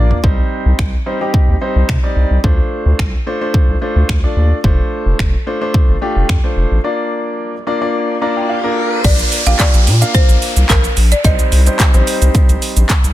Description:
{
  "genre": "dance-pop",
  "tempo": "109 BPM",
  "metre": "4/4",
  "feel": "straight",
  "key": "unclear",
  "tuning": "A4 = 440 Hz",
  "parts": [
    { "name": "warm concert grand piano", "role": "accompaniment", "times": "0.0-12.8 s", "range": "G3 to Bb5", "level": "-19 LUFS", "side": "left 1 dB", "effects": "sidechain pumping" },
    { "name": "round analog bass", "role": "bass", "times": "0.0-13.1 s", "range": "F1 to C3", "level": "-13 LUFS", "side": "equal", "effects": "sidechain pumping" },
    { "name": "pop drum kit", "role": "drums", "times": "0.1-13.1 s", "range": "crash cymbal, finger snaps, handclaps, hi-hat, kick drum, shaker, toms", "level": "-14 LUFS", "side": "equal", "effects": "soft clipping on snare" },
    { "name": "riser and downlifter", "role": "sound effects", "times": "7.6-13.1 s", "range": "none", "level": "-22 LUFS", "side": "right 1 dB", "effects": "none" },
    { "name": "folk marimba with hard mallets", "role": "melody", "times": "9.0-12.9 s", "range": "Bb4 to F5", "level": "-21 LUFS", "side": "equal", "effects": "dub echo" },
    { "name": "group handclap", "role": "percussion", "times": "9.6-13.0 s", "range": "none", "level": "-27 LUFS", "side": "left 5 dB", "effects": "none" }
  ],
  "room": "little or no reverb",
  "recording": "dense, heavily limited modern master",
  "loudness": "-12 LUFS",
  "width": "side -14 dB against mid",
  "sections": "0.0-9.0 A section; 9.0-13.1 B section",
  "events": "drum fill 0.0; break 6.8-9.0; riser 7.6-9.0; grand piano fill 7.9-9.0",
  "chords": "0.2 Cm; 2.4 Dm7; 4.6 F6; 6.8 Bb; 11.2 Cm",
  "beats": "| 0.24 0.79 1.34 1.89 | 2.44 2.99 3.54 4.09 | 4.64 5.19 5.74 6.29 | 6.84 7.39 7.94 8.49 | 9.04 9.60 10.15 10.70 | 11.25 11.80 12.35 12.90"
}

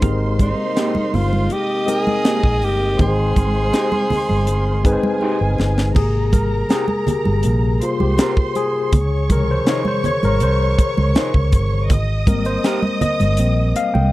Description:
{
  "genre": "lush 1970s-style soul",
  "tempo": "81 BPM",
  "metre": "4/4",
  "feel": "straight",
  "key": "Ab major",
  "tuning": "A4 = 440 Hz",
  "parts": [
    { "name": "warm studio violin section", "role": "second line", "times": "0.0-14.1 s", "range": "Ab4 to Eb6", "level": "-26 LUFS", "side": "right 2 dB", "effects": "none" },
    { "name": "tine electric piano", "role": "accompaniment", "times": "0.0-14.1 s", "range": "C3 to G5", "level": "-21 LUFS", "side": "left 2 dB", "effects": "medium stereo tremolo" },
    { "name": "percussive tonewheel organ", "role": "sustained chords", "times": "0.0-5.9 s", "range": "C3 to Bb4", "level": "-32 LUFS", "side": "right 1 dB", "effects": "fast rotary speaker, overdrive, chorus vibrato" },
    { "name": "vintage muted fingered electric bass", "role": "bass", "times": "0.0-14.1 s", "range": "G1 to Db2", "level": "-19 LUFS", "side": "equal", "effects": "none" },
    { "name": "tight funk drum kit", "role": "drums", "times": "0.0-13.9 s", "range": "crash cymbal, hi-hat, kick drum, snare drum", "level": "-17 LUFS", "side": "equal", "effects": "none" },
    { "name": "congas", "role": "percussion", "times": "0.0-14.1 s", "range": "none", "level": "-24 LUFS", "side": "right 2 dB", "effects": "none" },
    { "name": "breathy tenor saxophone", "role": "melody", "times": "0.4-5.2 s", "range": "Eb4 to Ab4", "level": "-21 LUFS", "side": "equal", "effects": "none" },
    { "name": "electric guitar through a small old amp", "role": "riff", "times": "0.8-12.8 s", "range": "Bb3 to C5", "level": "-24 LUFS", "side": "right 2 dB", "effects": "none" }
  ],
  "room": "small room reverb",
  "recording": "dry, close 1970s-style studio recording",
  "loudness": "-15 LUFS",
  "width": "side -17 dB against mid",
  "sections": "0.0-6.0 A section; 6.0-14.1 B section",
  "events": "drum fill 5.2-6.0; tine electric piano solo 6.0-14.1",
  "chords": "0.0 Abmaj9; 3.0 Abmaj7; 6.0 Abmaj9; 8.9 Dbmaj9; 11.9 Abmaj9",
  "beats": "| 0.03 0.77 1.51 2.25 | 2.99 3.73 4.48 5.22 | 5.96 6.70 7.45 8.19 | 8.93 9.67 10.41 11.16 | 11.90 12.64 13.39"
}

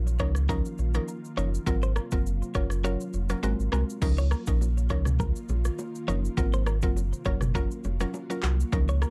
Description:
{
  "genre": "afrobeats",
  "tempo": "102 BPM",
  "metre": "4/4",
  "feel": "swing 55% on 16ths",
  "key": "Db major",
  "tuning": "A4 = 440 Hz",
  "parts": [
    { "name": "mallet-like synth pluck", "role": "accompaniment", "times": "0.0-8.9 s", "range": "F3 to Bb4", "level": "-36 LUFS", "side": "equal", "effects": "chorus" },
    { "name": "ethereal airy pad", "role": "sustained chords", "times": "0.0-9.1 s", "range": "C3 to Gb4", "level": "-41 LUFS", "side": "equal", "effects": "ensemble chorus, built-in reverb, sidechain pumping" },
    { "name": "sub bass with octave", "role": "bass", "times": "0.0-9.1 s", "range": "F1 to Db2", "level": "-29 LUFS", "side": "equal", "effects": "none" },
    { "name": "afro-pop drum kit", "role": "drums", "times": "0.1-9.1 s", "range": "crash cymbal, handclaps, kick drum, rim click, shaker, toms", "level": "-33 LUFS", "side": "equal", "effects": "none" },
    { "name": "direct-recorded clean electric guitar", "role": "riff", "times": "0.2-9.1 s", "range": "Gb4 to Db5", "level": "-39 LUFS", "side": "equal", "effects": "tape echo" },
    { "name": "congas and bongos", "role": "percussion", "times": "4.0-9.1 s", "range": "none", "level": "-42 LUFS", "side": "equal", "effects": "none" }
  ],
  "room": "light reverb",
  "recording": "dark, warm production",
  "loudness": "-27 LUFS",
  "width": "mono",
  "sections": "0.0-4.0 A section; 4.0-9.1 B section",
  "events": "kick muted 2.8-4.0",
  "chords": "0.0 Db69; 1.7 Ab13; 2.5 Gbmaj7; 3.4 Ab9; 4.0 Db69; 6.4 Ab13; 7.3 Gbmaj7",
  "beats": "0.49 1.08 | 1.67 2.26 2.84 3.43 | 4.02 4.61 5.20 5.79 | 6.37 6.96 7.55 8.14 | 8.73"
}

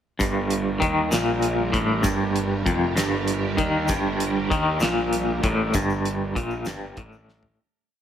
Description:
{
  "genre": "psychedelic rock",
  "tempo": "65 BPM (dotted quarters)",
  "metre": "6/8",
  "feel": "straight",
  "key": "G minor",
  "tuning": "A4 = 440 Hz",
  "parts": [
    { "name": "string machine, full ensemble", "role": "sustained chords", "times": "0.2-7.5 s", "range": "G3 to Bb4", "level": "-32 LUFS", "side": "right 6 dB", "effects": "phaser, ensemble chorus" },
    { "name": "twangy electric guitar", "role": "riff", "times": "0.2-7.6 s", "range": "F2 to Eb3", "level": "-22 LUFS", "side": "equal", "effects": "tremolo" },
    { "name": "fuzz picked electric bass", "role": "bass", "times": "0.2-7.5 s", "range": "F1 to Eb2", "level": "-30 LUFS", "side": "equal", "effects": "overdrive" },
    { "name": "damped 70s drum kit", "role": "drums", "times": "0.2-7.6 s", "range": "hi-hat, kick drum, snare drum, toms", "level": "-28 LUFS", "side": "equal", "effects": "none" },
    { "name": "egg shaker", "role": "percussion", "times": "0.2-7.2 s", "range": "none", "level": "-39 LUFS", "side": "left 5 dB", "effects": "none" }
  ],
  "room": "light reverb",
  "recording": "none",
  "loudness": "-21 LUFS",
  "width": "side -9 dB against mid",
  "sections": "0.2-7.6 riff",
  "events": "fade-out 5.7-7.6; drum fill 7.3-7.6",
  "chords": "0.2 Gm",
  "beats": "| 0.21 1.13 | 2.06 2.98 | 3.90 4.82 | 5.75 6.67"
}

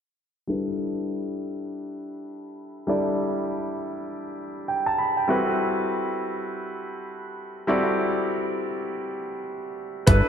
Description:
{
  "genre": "R&B, new jack swing",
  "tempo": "100 BPM",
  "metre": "4/4",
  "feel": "swing 62% on 16ths",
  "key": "G major",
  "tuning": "A4 = 440 Hz",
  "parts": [
    { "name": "warm concert grand piano", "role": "accompaniment", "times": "0.5-10.3 s", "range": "G3 to B5", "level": "-25 LUFS", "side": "equal", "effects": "low-pass filter" },
    { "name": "warm grand piano", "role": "melody", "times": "10.1-10.3 s", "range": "B4", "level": "-22 LUFS", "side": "right 1 dB", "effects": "lush chorus" },
    { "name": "fat analog bass", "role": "bass", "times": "10.1-10.2 s", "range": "G1", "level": "-18 LUFS", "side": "equal", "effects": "none" },
    { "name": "gated 80s digital drum machine", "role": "drums", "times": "10.1-10.2 s", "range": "hi-hat, kick drum", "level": "-17 LUFS", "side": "equal", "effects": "overdrive" }
  ],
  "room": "wet lush hall reverb, RT60 2.3 s",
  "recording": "bright 1980s-style digital production",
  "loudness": "-25 LUFS",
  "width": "side -8 dB against mid",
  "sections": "0.5-10.1 A section",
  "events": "filter sweep on grand piano 0.5-10.1",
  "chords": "0.5 G6; 5.3 D13/G",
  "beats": "| 0.48 1.08 1.68 2.28 | 2.88 3.48 4.08 4.68 | 5.28 5.88 6.48 7.08 | 7.68 8.28 8.88 9.48 | 10.08"
}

